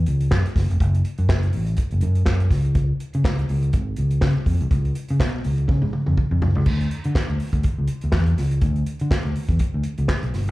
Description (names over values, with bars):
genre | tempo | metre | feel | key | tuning
disco | 123 BPM | 4/4 | swing 56% on 16ths | unclear | A4 = 440 Hz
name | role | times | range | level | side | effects
fingered electric bass | bass | 0.0-10.5 s | E#1 to D3 | -20 LUFS | equal | none
vintage drum kit | drums | 0.1-10.5 s | crash cymbal, handclaps, hi-hat, kick drum, snare drum, toms | -22 LUFS | equal | none
room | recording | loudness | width
little or no reverb | live gig heard through the venue's PA, club reverb | -19 LUFS | side -19 dB against mid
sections
0.0-6.7 A section; 6.7-10.5 B section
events
drum fill 5.7-6.7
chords
none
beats
0.32 | 0.80 1.29 1.78 2.27 | 2.76 3.25 3.73 4.22 | 4.71 5.20 5.69 6.18 | 6.67 7.16 7.64 8.13 | 8.62 9.11 9.60 10.09